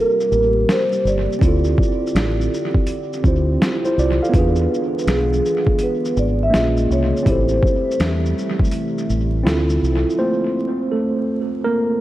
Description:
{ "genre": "lo-fi hip hop", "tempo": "82 BPM", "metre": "4/4", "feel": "swing 66% on 16ths", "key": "D minor", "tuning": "A4 = 440 Hz", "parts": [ { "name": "vibraphone with soft mallets", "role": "melody", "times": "0.0-8.0 s", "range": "G#4 to E5", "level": "-21 LUFS", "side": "right 1 dB", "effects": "low-pass filter, analog delay" }, { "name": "mellow tine electric piano", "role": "accompaniment", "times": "0.0-12.0 s", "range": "A3 to F5", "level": "-21 LUFS", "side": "right 1 dB", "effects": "medium stereo tremolo, cassette tape, low-pass filter, analog delay" }, { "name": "warbly tape-like pad", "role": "sustained chords", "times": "0.0-10.2 s", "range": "C3 to E5", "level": "-27 LUFS", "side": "left 1 dB", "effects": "chorus, built-in reverb, low-pass filter" }, { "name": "boom bap sampler-style drum kit", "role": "drums", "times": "0.2-10.2 s", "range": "hi-hat, kick drum, shaker, snare drum", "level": "-21 LUFS", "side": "equal", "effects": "overdrive, analog delay" }, { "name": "deep dub fingered electric bass", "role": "bass", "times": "0.3-10.0 s", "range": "G1 to E2", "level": "-20 LUFS", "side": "equal", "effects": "none" } ], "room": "light reverb", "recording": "echo-heavy mix, vinyl crackle", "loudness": "-16 LUFS", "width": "side -15 dB against mid", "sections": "0.0-10.2 A section; 10.2-12.0 B section", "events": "tine electric piano solo 10.2-12.0", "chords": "0.0 Gm11; 1.4 Dm7; 4.3 E7b9; 6.5 Bbm7; 7.3 Am7; 9.5 Dm9; 10.2 Bbmaj7sus2/A" }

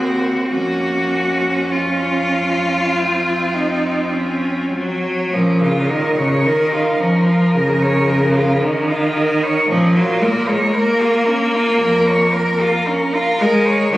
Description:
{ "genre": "classical, lyrical piece for cello ensemble", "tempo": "48-57 BPM", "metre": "4/4", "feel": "rubato", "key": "Bb minor", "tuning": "A4 = 439 Hz", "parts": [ { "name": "rich cello", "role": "melody", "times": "0.0-14.0 s", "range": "F4 to C5", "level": "-22 LUFS", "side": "left 1 dB", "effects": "none" }, { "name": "clear cello", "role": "second line", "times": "0.0-14.0 s", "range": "C4 to Db5", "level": "-20 LUFS", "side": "right 2 dB", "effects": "none" }, { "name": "clear cello", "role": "accompaniment", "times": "0.0-14.0 s", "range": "Db3 to F4", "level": "-18 LUFS", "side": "equal", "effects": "none" }, { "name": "rich cello", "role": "bass", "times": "0.0-14.0 s", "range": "Eb2 to Bb2", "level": "-25 LUFS", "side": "equal", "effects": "none" } ], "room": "wet recital hall reverb, RT60 1.4 s", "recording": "recorded on a phone in the room, studio reverb, compression", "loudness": "-14 LUFS", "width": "side -16 dB against mid", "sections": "0.0-5.3 A section; 5.3-14.0 B section", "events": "none", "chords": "0.0 Bbsus4/Eb; 0.5 Bbm/F; 3.0 F5; 5.3 Bbm" }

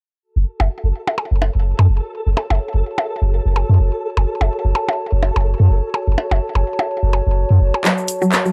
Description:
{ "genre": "minimal techno", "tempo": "126 BPM", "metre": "4/4", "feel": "swing 56% on 16ths", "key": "F# minor", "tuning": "A4 = 440 Hz", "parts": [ { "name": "flickering grainy texture", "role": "texture", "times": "0.8-7.9 s", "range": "A4", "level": "-32 LUFS", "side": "equal", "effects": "built-in reverb" }, { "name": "warbly tape-like pad", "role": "texture", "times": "0.8-8.5 s", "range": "F#4 to A5", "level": "-29 LUFS", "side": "equal", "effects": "chorus, built-in reverb" }, { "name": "punchy sub bass", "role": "bass", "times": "0.4-7.7 s", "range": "F#1 to F#2", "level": "-17 LUFS", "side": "equal", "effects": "none" }, { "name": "percussion blips", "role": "percussion", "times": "0.6-7.8 s", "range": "none", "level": "-25 LUFS", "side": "equal", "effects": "tape echo" }, { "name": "mallet-like synth pluck", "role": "riff", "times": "7.8-8.5 s", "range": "F#3", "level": "-20 LUFS", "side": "equal", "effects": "chorus" }, { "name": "minimal click drum kit", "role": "drums", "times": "7.8-8.4 s", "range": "handclaps, hi-hat", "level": "-20 LUFS", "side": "equal", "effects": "none" }, { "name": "egg shaker", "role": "percussion", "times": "7.8-8.5 s", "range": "none", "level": "-33 LUFS", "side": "equal", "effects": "none" } ], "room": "little or no reverb", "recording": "dry, gritty hardware recording, cassette tape", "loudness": "-18 LUFS", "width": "mono", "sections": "0.2-7.8 A section", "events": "drum fill 7.8-8.5", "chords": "0.2 F#m" }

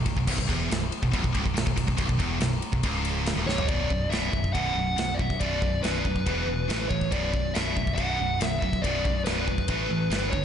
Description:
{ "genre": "heavy metal", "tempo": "140 BPM", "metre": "4/4", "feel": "straight", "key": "B minor", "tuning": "A4 = 440 Hz", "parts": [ { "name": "high-gain distorted guitar", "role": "riff", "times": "0.0-10.4 s", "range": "B1 to A3", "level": "-32 LUFS", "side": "left 7 dB", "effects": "distortion, slapback echo" }, { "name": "high-gain distorted guitar", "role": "riff", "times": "0.0-10.4 s", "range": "B1 to A3", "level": "-31 LUFS", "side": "right 7 dB", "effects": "distortion" }, { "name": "modern bright picked electric bass", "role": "bass", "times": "0.0-10.4 s", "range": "B0 to A1", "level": "-31 LUFS", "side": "equal", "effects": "none" }, { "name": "modern studio drum kit", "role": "drums", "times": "0.1-10.4 s", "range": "crash cymbal, kick drum, ride cymbal, snare drum, toms", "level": "-29 LUFS", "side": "equal", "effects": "none" }, { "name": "dark smooth lead guitar", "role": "melody", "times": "3.5-10.4 s", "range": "B4 to F#5", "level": "-29 LUFS", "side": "equal", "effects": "overdrive, slapback echo" } ], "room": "moderate concert hall reverb, RT60 2.1 s", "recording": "big arena sound, nothing above 10.5 kHz", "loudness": "-24 LUFS", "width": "side -8 dB against mid", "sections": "0.0-3.7 A section; 3.7-10.4 B section", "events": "drum fill 3.5", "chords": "0.0 N.C.; 3.7 Bm; 6.3 E5; 6.7 A5; 7.1 Bm; 9.7 A5" }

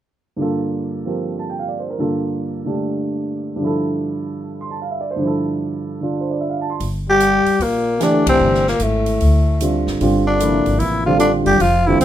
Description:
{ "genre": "modal jazz", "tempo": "150 BPM", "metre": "4/4", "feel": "swing 65% on 8ths", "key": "G dorian", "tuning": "A4 = 440 Hz", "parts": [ { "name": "dark grand piano", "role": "accompaniment", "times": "0.4-12.0 s", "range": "G2 to C6", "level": "-20 LUFS", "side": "right 2 dB", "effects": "none" }, { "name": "upright bass", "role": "bass", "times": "6.8-12.0 s", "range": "F1 to D2", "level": "-19 LUFS", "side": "equal", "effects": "none" }, { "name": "swinging big-band drum kit", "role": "drums", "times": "6.8-12.0 s", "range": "hi-hat, kick drum, ride cymbal, snare drum", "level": "-29 LUFS", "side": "equal", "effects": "none" }, { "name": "growling tenor saxophone", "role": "melody", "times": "7.1-12.0 s", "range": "A3 to G4", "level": "-17 LUFS", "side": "left 1 dB", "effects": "none" }, { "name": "dark trombone", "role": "second line", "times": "7.1-12.0 s", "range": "A2 to G3", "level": "-22 LUFS", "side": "left 4 dB", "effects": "none" } ], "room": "moderate studio reverb, RT60 0.6 s", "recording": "minimal, uncompressed stereo recording", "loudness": "-16 LUFS", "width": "side -11 dB against mid", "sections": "0.4-6.8 A section; 6.8-12.0 B section", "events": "band accent 8.2", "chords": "0.4 Gm9; 3.6 Dmadd9/G; 6.8 Gm9; 10.0 Dmadd9" }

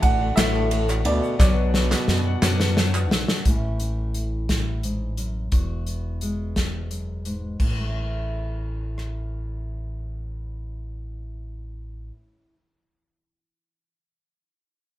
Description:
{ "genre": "indie folk with a building arrangement", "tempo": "58 BPM (dotted quarters)", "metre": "6/8", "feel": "straight", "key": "A major", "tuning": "A4 = 440 Hz", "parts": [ { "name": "dark upright piano", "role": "melody", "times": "0.0-3.1 s", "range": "D5 to F#5", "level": "-28 LUFS", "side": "right 2 dB", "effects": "none" }, { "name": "warm trombone", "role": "second line", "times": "0.0-3.1 s", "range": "A2 to D3", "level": "-29 LUFS", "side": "right 4 dB", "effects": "none" }, { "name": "picked old ladder-braced acoustic guitar", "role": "accompaniment", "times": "0.0-3.5 s", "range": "B2 to F#4", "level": "-29 LUFS", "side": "left 6 dB", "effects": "none" }, { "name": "warm upright piano", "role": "accompaniment", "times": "0.0-3.5 s", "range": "B1 to D5", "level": "-40 LUFS", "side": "right 2 dB", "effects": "none" }, { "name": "fingered electric bass", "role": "bass", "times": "0.0-12.1 s", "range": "E1 to F#2", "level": "-26 LUFS", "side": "equal", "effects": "none" }, { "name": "natural country drum kit", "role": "drums", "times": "0.0-9.1 s", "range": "crash cymbal, hi-hat, kick drum, ride cymbal, rim click, snare drum", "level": "-22 LUFS", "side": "equal", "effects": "none" }, { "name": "tube shaker", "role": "percussion", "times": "0.0-3.4 s", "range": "none", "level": "-40 LUFS", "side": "left 7 dB", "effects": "none" }, { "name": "group handclap", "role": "percussion", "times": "0.4-3.2 s", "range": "none", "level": "-32 LUFS", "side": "right 1 dB", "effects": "none" }, { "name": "fingerpicked steel-string acoustic guitar", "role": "accompaniment", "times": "3.5-12.5 s", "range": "E2 to F#4", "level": "-34 LUFS", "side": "equal", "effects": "none" } ], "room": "moderate studio reverb, RT60 0.8 s", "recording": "band playing live in one room", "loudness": "-21 LUFS", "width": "side -14 dB against mid", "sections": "0.0-3.5 A section; 3.5-7.6 B section; 7.6-11.7 C section", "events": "drum fill 1.4-3.5", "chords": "0.0 D; 1.4 Bm; 3.5 A; 5.5 Eadd9; 7.6 A" }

